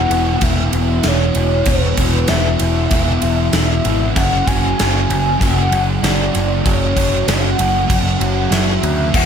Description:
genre	rock, shoegaze and dream pop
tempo	96 BPM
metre	4/4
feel	straight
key	unclear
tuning	A4 = 442 Hz
part	pure sine lead	melody	0.0-9.3 s	B4 to G#5	-21 LUFS	equal	chorus, phaser, tape echo
part	fuzz guitar	riff	0.0-9.3 s	E2 to F#3	-18 LUFS	equal	distortion, analog chorus
part	growling picked electric bass	bass	0.0-9.3 s	E1 to D2	-18 LUFS	equal	overdrive
part	gated 80s drum kit	drums	0.1-9.3 s	crash cymbal, kick drum, ride cymbal, snare drum	-19 LUFS	equal	none
room	moderate plate reverb, RT60 2.1 s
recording	dreamy mix soaked in reverb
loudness	-13 LUFS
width	side -7 dB against mid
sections	0.0-9.3 A section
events	none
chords	0.0 E5; 4.2 F#5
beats	0.42 1.04 | 1.67 2.29 2.92 3.54 | 4.17 4.79 5.41 6.04 | 6.66 7.28 7.91 8.53 | 9.15

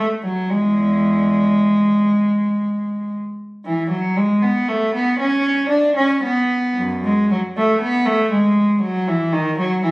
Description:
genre	classical, baroque-style suite movement for unaccompanied cello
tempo	58 BPM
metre	3/4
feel	rubato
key	unclear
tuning	A4 = 439 Hz
part	warm cello	solo	0.0-9.9 s	E2 to D4	-16 LUFS	equal	none
room	light reverb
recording	recorded on a phone in the room, studio reverb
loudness	-15 LUFS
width	side -23 dB against mid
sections	0.0-9.9 A section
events	none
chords	none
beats	| 0.50 1.54 2.60 | 3.65 4.69 5.72 | 6.78 7.81 8.81 | 9.82

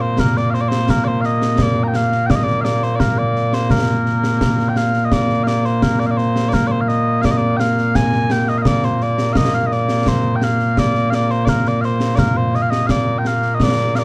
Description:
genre	scottish traditional, Scottish pipe music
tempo	85 BPM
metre	2/4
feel	straight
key	Bb major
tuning	A4 = 438 Hz
part	mellow small bagpipes	melody	0.0-14.0 s	Bb2 to Bb5	-19 LUFS	equal	none
part	concert snare drum and concert bass drum	drums	0.2-14.0 s	none	-22 LUFS	equal	none
room	light reverb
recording	dark, warm production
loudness	-17 LUFS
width	mono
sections	0.0-5.1 A section; 5.1-14.0 A section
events	none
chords	none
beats	0.18 | 0.89 1.59 | 2.30 3.00 | 3.71 4.42 | 5.12 5.83 | 6.53 7.24 | 7.94 8.65 | 9.36 10.06 | 10.77 11.47 | 12.18 12.88 | 13.59

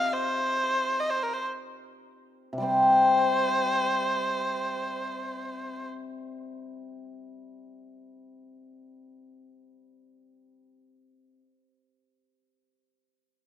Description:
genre	chinese traditional, Chinese chamber ensemble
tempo	46-62 BPM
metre	2/4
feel	rubato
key	unclear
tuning	A4 = 440 Hz
part	rich erhu	melody	0.0-5.9 s	Bb4 to F5	-28 LUFS	right 1 dB	none
part	hammered dulcimer	accompaniment	0.0-11.4 s	C3 to C4	-27 LUFS	left 2 dB	none
room	moderate concert hall reverb, RT60 2.2 s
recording	none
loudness	-24 LUFS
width	side -11 dB against mid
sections	0.0-2.6 A section; 2.6-7.8 B section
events	slowing down 0.0-2.6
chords	none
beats	| 0.37 1.44 | 2.65 3.94 | 5.22 6.50

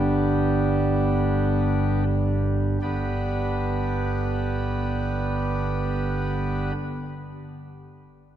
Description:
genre	classical, chorale-style piece for pipe organ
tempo	free time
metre	none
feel	none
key	G major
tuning	A4 = 437 Hz
part	pipe organ, cornet	solo	0.0-6.7 s	G1 to B4	-22 LUFS	right 1 dB	none
room	wet church reverb, RT60 3.6 s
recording	none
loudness	-22 LUFS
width	side -10 dB against mid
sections	0.0-2.8 A section; 2.8-8.4 B section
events	slowing down 0.0-2.8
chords	0.0 G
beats	free time

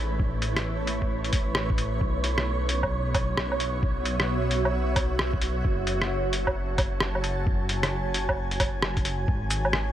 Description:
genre	future garage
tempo	132 BPM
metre	4/4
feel	swing 63% on 16ths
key	unclear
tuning	A4 = 440 Hz
part	granular cloud pad	sustained chords	0.0-9.9 s	G#3 to A5	-31 LUFS	right 1 dB	built-in reverb, sidechain pumping
part	dark detuned saw bass	bass	0.0-9.9 s	F#1 to B1	-29 LUFS	equal	sidechain pumping
part	wind-like tuned noise texture	texture	0.0-9.3 s	C#5	-37 LUFS	right 5 dB	built-in reverb
part	electronic kick drum	drums	0.2-9.4 s	none	-27 LUFS	equal	none
part	lo-fi sampler-style drum kit	drums	0.4-9.8 s	cabasa, hi-hat, rim click, woodblock	-28 LUFS	equal	none
room	light reverb, digital ambience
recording	none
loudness	-24 LUFS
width	side -12 dB against mid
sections	0.0-9.3 A section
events	none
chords	0.0 Aadd9; 2.0 Bsus24; 5.6 F#m9; 9.3 G#7(no3)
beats	| 0.19 0.65 1.10 1.55 | 2.01 2.46 2.92 3.37 | 3.83 4.28 4.74 5.19 | 5.65 6.10 6.55 7.01 | 7.46 7.92 8.37 8.83 | 9.28 9.74

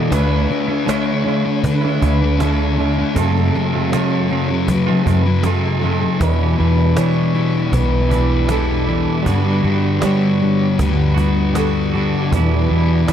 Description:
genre	rock, shoegaze and dream pop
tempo	79 BPM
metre	4/4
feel	straight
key	unclear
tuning	A4 = 440 Hz
part	picked twelve-string acoustic guitar	arpeggios	0.0-13.1 s	A4 to C#5	-27 LUFS	right 1 dB	lush chorus, slapback echo
part	thick fuzz guitar	riff	0.0-13.1 s	E2 to D4	-18 LUFS	left 6 dB	distortion, wide subtle chorus
part	twangy electric guitar	riff	0.0-13.1 s	E2 to F#4	-22 LUFS	right 14 dB	reverse reverb
part	vintage muted picked electric bass	bass	0.1-13.1 s	B1 to G3	-18 LUFS	right 1 dB	none
part	cajon	drums	0.1-13.1 s	none	-24 LUFS	right 1 dB	none
room	little or no reverb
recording	dark, warm production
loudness	-14 LUFS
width	side -9 dB against mid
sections	0.0-6.2 A section; 6.2-13.1 B section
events	none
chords	0.1 Dm; 3.2 F#m; 6.2 Em7; 9.3 Gmaj7; 12.3 Em7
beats	| 0.12 0.88 1.64 2.40 | 3.16 3.93 4.69 5.45 | 6.21 6.98 7.74 8.50 | 9.27 10.03 10.79 11.56 | 12.32 13.09

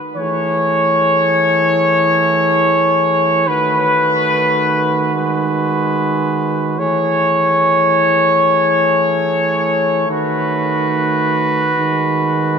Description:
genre	hip hop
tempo	free time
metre	none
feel	none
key	A lydian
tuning	A4 = 440 Hz
part	mellow brass ensemble	solo	0.2-12.6 s	D#3 to C#5	-13 LUFS	equal	none
room	moderate huge ambient reverb, RT60 6.2 s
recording	none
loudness	-13 LUFS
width	side -6 dB against mid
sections	0.2-12.6 A section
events	none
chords	0.2 Amaj7; 3.5 B7; 5.1 G#m7; 6.8 Amaj7; 10.1 B7; 11.7 G#m7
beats	free time

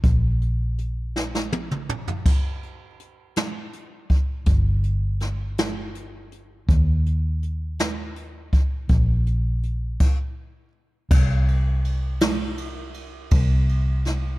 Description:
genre	six-eight pop ballad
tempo	54 BPM (dotted quarters)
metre	6/8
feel	straight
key	C minor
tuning	A4 = 440 Hz
part	vintage muted fingered electric bass	bass	0.0-14.4 s	G1 to Eb2	-22 LUFS	equal	none
part	jazz brush drum kit	drums	0.0-14.2 s	crash cymbal, hi-hat, kick drum, ride cymbal, snare drum, toms	-22 LUFS	equal	none
room	little or no reverb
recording	dark, warm production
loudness	-20 LUFS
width	side -19 dB against mid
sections	0.0-11.1 A section; 11.1-14.4 B section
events	drum fill 1.1-2.2; stop 10.0-11.1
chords	none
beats	| 0.03 1.14 | 2.25 3.36 | 4.47 5.58 | 6.68 7.79 | 8.90 10.01 | 11.11 12.22 | 13.33

